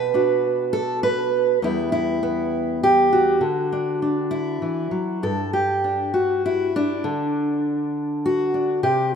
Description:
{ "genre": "folk, solo fingerstyle acoustic guitar", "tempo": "101 BPM", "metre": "3/4", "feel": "rubato", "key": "G major", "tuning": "A4 = 441 Hz", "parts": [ { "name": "fingerpicked steel-string acoustic guitar", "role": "solo", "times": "0.0-9.2 s", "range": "E2 to B4", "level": "-19 LUFS", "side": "equal", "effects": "none" } ], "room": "moderate lush hall reverb, RT60 3.1 s", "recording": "rough home demo mix", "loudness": "-19 LUFS", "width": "side -7 dB against mid", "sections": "0.0-5.2 A section; 5.2-9.2 B section", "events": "none", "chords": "0.0 Bm; 1.6 Em; 3.4 Dadd9; 5.2 G5; 7.0 N.C." }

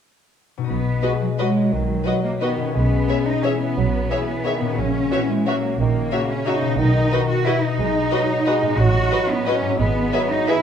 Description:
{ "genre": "classical", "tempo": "178 BPM", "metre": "3/4", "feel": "uneven beats, rubato", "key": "B major", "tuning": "A4 = 440 Hz", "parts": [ { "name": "concert harp", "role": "arpeggios", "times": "0.6-10.6 s", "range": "G#2 to E5", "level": "-25 LUFS", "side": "left 9 dB", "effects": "none" }, { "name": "rich studio cello section", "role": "bass", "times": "0.7-10.6 s", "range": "F#3 to F#4", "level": "-23 LUFS", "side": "right 2 dB", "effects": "none" }, { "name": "rich studio double bass section", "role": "bass", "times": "0.7-10.1 s", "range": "G#1 to B1", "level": "-23 LUFS", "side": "right 3 dB", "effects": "none" }, { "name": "warm studio violin section", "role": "melody", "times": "1.0-10.6 s", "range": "D#5 to E5", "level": "-33 LUFS", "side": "left 3 dB", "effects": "none" }, { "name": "rich studio violin section", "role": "second line", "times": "1.0-10.6 s", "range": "B4 to C#5", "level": "-29 LUFS", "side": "left 2 dB", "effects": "none" }, { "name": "mellow bassoon", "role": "accompaniment", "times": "1.0-10.6 s", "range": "C#3 to G#3", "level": "-26 LUFS", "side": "right 2 dB", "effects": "none" }, { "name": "rich studio viola section", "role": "accompaniment", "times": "1.0-10.6 s", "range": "F#4 to G#4", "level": "-31 LUFS", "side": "right 1 dB", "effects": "none" }, { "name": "warm French horn section", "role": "sustained chords", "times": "1.0-10.6 s", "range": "F#4 to E5", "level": "-31 LUFS", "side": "left 5 dB", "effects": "none" } ], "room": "wet recital hall reverb, RT60 1.7 s", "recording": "dark, warm production", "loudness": "-18 LUFS", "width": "side -8 dB against mid", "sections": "0.7-10.6 A section", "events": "none", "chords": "0.7 B; 2.7 C#m7/B; 4.8 F#7/A#; 6.8 B; 8.8 B7/A; 9.8 E/G#" }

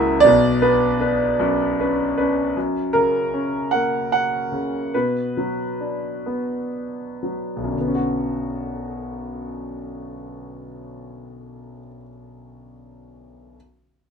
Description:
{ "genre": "classical, lyrical solo piano", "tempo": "35-54 BPM (dotted quarters)", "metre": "6/8", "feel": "rubato", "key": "B minor", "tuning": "A4 = 439 Hz", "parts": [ { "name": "clear concert grand piano", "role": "solo", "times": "0.0-13.6 s", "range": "F#1 to F#5", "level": "-19 LUFS", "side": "right 1 dB", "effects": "none" } ], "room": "light reverb", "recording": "minimal, uncompressed stereo recording", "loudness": "-19 LUFS", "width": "side -6 dB against mid", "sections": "0.0-2.6 A section; 2.6-7.8 B section; 7.8-11.0 C section", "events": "slowing down 2.6-7.8", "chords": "0.2 Bmadd9; 2.6 F#; 4.9 Bm; 7.8 Bmadd9" }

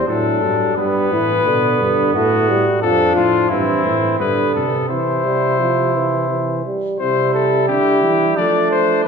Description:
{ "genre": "classical, imitative canzona for brass ensemble", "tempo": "87 BPM", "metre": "3/4", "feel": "straight", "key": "C major", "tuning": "A4 = 439 Hz", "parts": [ { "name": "warm cornet", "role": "melody", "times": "0.0-9.1 s", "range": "E4 to D5", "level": "-19 LUFS", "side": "left 7 dB", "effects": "none" }, { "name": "mellow trumpet", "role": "second line", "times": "0.0-9.1 s", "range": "B3 to E4", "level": "-22 LUFS", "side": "right 4 dB", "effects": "none" }, { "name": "warm trombone", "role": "accompaniment", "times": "0.0-9.1 s", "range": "D3 to A3", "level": "-19 LUFS", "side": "right 2 dB", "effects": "none" }, { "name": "clear tuba", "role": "bass", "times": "0.0-9.0 s", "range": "F2 to F3", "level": "-22 LUFS", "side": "right 2 dB", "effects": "none" } ], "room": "wet recital hall reverb, RT60 1.5 s", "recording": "recorded in a church or concert hall", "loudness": "-14 LUFS", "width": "side -6 dB against mid", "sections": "0.0-7.0 A section; 7.0-9.1 B section", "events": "none", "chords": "0.1 D/A; 0.8 G; 2.1 Gmaj9/A; 2.8 Dm/F; 3.5 C/G; 4.2 G; 4.9 C; 8.4 Dm/F" }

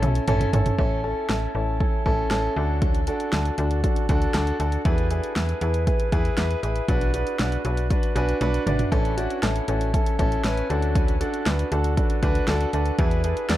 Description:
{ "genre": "synth-pop", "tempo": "118 BPM", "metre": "4/4", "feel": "straight", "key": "unclear", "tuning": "A4 = 437 Hz", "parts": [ { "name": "warm concert grand piano", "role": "accompaniment", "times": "0.0-13.6 s", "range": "C#4 to G#5", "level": "-25 LUFS", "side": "equal", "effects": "tape echo, shimmer reverb" }, { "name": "slap-like FM bass", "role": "bass", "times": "0.0-13.6 s", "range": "G#1 to E2", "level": "-25 LUFS", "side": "equal", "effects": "none" }, { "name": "deep house drum kit", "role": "drums", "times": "0.0-13.6 s", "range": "hi-hat, kick drum, snare drum, toms", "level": "-24 LUFS", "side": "equal", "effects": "none" } ], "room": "moderate spring reverb, RT60 1.2 s, digital ambience", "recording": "echo-heavy mix", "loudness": "-21 LUFS", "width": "side -14 dB against mid", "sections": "0.8-13.6 A section", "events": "drum fill 0.0-0.8, 8.4-8.9; grand piano fill 7.9-8.9", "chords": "0.0 A; 2.6 D; 4.9 E; 6.9 Bm; 8.9 A; 10.7 D6; 13.0 E" }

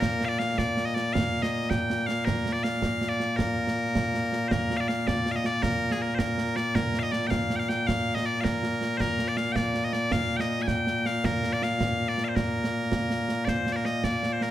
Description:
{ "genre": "scottish traditional, Scottish pipe music", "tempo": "107 BPM (dotted quarters)", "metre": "6/8", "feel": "straight", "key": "Bb major", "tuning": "A4 = 440 Hz", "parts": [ { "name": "loud bright bagpipes", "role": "melody", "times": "0.0-14.5 s", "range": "Bb2 to Ab5", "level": "-26 LUFS", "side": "left 1 dB", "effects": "none" }, { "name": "concert snare drum and concert bass drum", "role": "drums", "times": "0.0-14.5 s", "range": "none", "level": "-30 LUFS", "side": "right 2 dB", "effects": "none" } ], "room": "moderate recital hall reverb, RT60 1.4 s", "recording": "none", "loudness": "-24 LUFS", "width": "side -12 dB against mid", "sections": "0.0-4.5 A section; 4.5-13.5 A section; 13.5-14.5 B section", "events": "none", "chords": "none" }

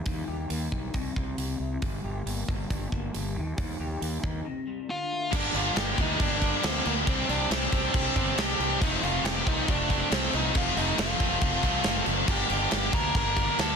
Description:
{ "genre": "quiet-loud alternative rock", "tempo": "138 BPM", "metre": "4/4", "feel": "straight", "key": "G minor", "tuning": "A4 = 444 Hz", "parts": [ { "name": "electric guitar through a small old amp", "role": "arpeggios", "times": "0.0-5.3 s", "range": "G2 to G4", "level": "-36 LUFS", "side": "left 3 dB", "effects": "ensemble chorus" }, { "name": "fuzz fingered electric bass", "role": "bass", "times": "0.1-13.7 s", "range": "F1 to Eb2", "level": "-32 LUFS", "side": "equal", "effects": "overdrive" }, { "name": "big rock drum kit", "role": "drums", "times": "0.1-13.7 s", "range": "crash cymbal, hi-hat, kick drum, snare drum", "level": "-29 LUFS", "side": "equal", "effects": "soft clipping on snare" }, { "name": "dark smooth lead guitar", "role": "melody", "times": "4.9-13.8 s", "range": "Bb3 to Bb5", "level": "-31 LUFS", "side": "equal", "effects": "overdrive, digital delay" }, { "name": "clear chamber string section", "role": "sustained chords", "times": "5.3-13.8 s", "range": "Bb3 to G5", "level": "-41 LUFS", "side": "left 2 dB", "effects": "none" }, { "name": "heavy high-gain guitar", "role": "riff", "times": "5.3-13.8 s", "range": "F2 to D4", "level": "-32 LUFS", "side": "left 12 dB", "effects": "distortion" }, { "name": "overdriven electric guitar", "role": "riff", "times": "5.3-13.8 s", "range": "F2 to D4", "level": "-31 LUFS", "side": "right 13 dB", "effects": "none" } ], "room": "light reverb, small room ambience", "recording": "dense, heavily limited modern master", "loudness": "-25 LUFS", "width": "side -6 dB against mid", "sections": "0.0-5.3 A section; 5.3-13.8 B section", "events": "none", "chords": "0.0 Eb; 0.9 C; 1.8 Gm; 3.4 Eb; 4.5 C5; 4.9 Dm; 5.3 Gmadd9; 7.1 Csus2; 8.8 F; 12.3 Gmadd9" }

